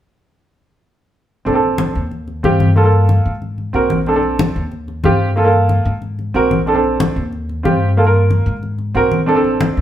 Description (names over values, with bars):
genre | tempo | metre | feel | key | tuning
Afro-Cuban jazz | 184 BPM | 4/4 | straight | Bb major | A4 = 440 Hz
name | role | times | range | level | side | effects
warm upright piano | accompaniment | 1.5-9.8 s | Bb3 to Bb4 | -15 LUFS | right 2 dB | none
upright bass | bass | 1.5-9.8 s | Bb1 to Ab2 | -17 LUFS | left 1 dB | none
congas | percussion | 1.5-9.8 s | none | -21 LUFS | left 2 dB | none
room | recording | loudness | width
wet studio reverb, RT60 0.9 s | band playing live in one room | -13 LUFS | side -11 dB against mid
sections
1.5-9.8 A section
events
none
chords
1.5 Bbmaj7; 2.1 Eb69; 2.8 Gm7; 3.4 Ab7; 4.1 Bbmaj7; 4.7 Eb69; 5.4 Gm7; 6.0 Ab7; 6.7 Bbmaj7; 7.3 Eb69; 8.0 Gm7; 8.6 Ab7; 9.3 Bbmaj7